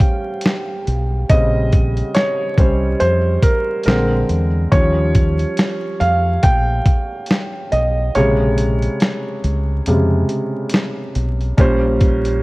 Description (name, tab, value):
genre	lo-fi hip hop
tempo	70 BPM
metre	4/4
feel	swing 58% on 16ths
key	Bb dorian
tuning	A4 = 440 Hz
part	felt-muted upright piano	accompaniment	0.0-12.4 s	Bb2 to G5	-18 LUFS	right 1 dB	cassette tape
part	dusty soul sampler-style drum kit	drums	0.0-12.4 s	hi-hat, kick drum, snare drum	-16 LUFS	equal	vintage 12-bit sampler grit
part	deep dub fingered electric bass	bass	0.9-12.4 s	Bb1 to F2	-18 LUFS	equal	none
room	light reverb, digital ambience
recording	worn, warbling old tape, cassette tape, vinyl crackle, warbly pitch drift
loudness	-14 LUFS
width	side -22 dB against mid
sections	0.0-11.6 A section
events	felt piano solo 0.0-11.6; kick muted 8.2-11.6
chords	0.0 Bbm69; 3.9 Bb7; 4.7 Eb7; 8.2 Bbm7; 11.6 Bbm69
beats	0.44 | 1.29 2.15 3.01 3.87 | 4.72 5.58 6.44 7.29 | 8.15 9.01 9.87 10.72 | 11.58